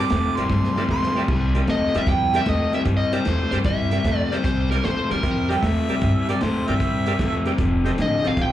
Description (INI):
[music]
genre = electric blues shuffle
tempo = 152 BPM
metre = 4/4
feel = swing 68% on 8ths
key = C mixolydian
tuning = A4 = 439 Hz
[part]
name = mellow harmonica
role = second line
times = 0.0-1.3, 5.5-7.6 s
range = C5 to D6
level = -27 LUFS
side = right 4 dB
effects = slapback echo, analog delay
[part]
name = overdriven tonewheel organ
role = accompaniment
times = 0.0-8.3 s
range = G4 to G5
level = -30 LUFS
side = right 5 dB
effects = slow rotary speaker, slapback echo
[part]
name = crunchy overdriven guitar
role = riff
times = 0.0-8.5 s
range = F2 to A3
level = -23 LUFS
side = left 3 dB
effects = slapback echo
[part]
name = upright bass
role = bass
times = 0.0-8.5 s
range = F1 to G2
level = -25 LUFS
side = right 1 dB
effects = none
[part]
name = crunchy breakbeat drum kit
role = drums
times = 0.1-8.5 s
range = crash cymbal, hi-hat, kick drum, snare drum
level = -27 LUFS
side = right 1 dB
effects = none
[part]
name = dark smooth lead guitar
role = melody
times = 1.7-5.5, 8.0-8.5 s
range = Bb4 to G5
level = -24 LUFS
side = equal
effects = overdrive, slapback echo
[sound]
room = light reverb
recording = live gig heard through the venue's PA, club reverb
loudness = -19 LUFS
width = side -12 dB against mid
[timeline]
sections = 0.0-1.3 A section; 1.3-8.5 B section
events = harmonica solo 0.0-1.3; drum fill 0.5-1.3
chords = 0.0 C9; 7.6 F9